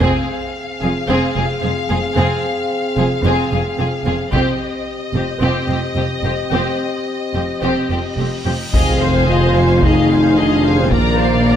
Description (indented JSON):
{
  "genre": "cinematic, epic orchestral film score",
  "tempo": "110 BPM",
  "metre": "4/4",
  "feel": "straight",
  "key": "F dorian",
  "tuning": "A4 = 440 Hz",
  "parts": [
    { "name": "warm symphonic violin section", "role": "melody", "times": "0.0-11.6 s", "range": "Eb5 to Bb5", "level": "-25 LUFS", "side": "left 4 dB", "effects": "none" },
    { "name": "warm symphonic violin section", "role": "second line", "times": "0.0-11.6 s", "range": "G4 to F5", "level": "-23 LUFS", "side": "left 3 dB", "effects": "none" },
    { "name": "dark symphonic viola section", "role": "accompaniment", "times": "0.0-11.6 s", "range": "C4 to D5", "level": "-23 LUFS", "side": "right 1 dB", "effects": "none" },
    { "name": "dark French horn section", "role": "sustained chords", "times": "0.0-11.6 s", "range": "Bb3 to Ab4", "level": "-21 LUFS", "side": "left 2 dB", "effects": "none" },
    { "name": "warm symphonic cello section", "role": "bass", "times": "0.0-11.6 s", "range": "F2 to Bb2", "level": "-23 LUFS", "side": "right 2 dB", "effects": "none" },
    { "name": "warm symphonic double bass section", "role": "bass", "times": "0.0-11.6 s", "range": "F1 to Bb1", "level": "-21 LUFS", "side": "right 2 dB", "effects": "none" },
    { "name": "taiko ensemble", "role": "drums", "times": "0.0-1.1, 4.3-5.4, 8.7-11.4 s", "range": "none", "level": "-21 LUFS", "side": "equal", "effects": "none" },
    { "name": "cymbal swell and sub drop", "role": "sound effects", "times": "8.0-10.9 s", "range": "none", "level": "-26 LUFS", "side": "equal", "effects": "none" },
    { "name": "clear trombone section", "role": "sustained chords", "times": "8.7-11.6 s", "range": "Eb3 to F3", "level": "-24 LUFS", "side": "right 2 dB", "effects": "none" },
    { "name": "warm tuba", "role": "bass", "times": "8.7-11.6 s", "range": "F1 to Bb1", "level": "-23 LUFS", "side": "right 4 dB", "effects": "none" }
  ],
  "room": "moderate scoring stage reverb, RT60 1.9 s",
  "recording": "none",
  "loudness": "-14 LUFS",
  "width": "side -9 dB against mid",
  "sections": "0.0-8.7 A section; 8.7-11.6 B section",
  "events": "build-up 0.0-8.7; cymbal swell 8.0-8.7; impact 8.7-10.9",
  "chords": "0.0 Fm; 4.3 Eb6/F; 8.7 Fm7; 10.9 Bb"
}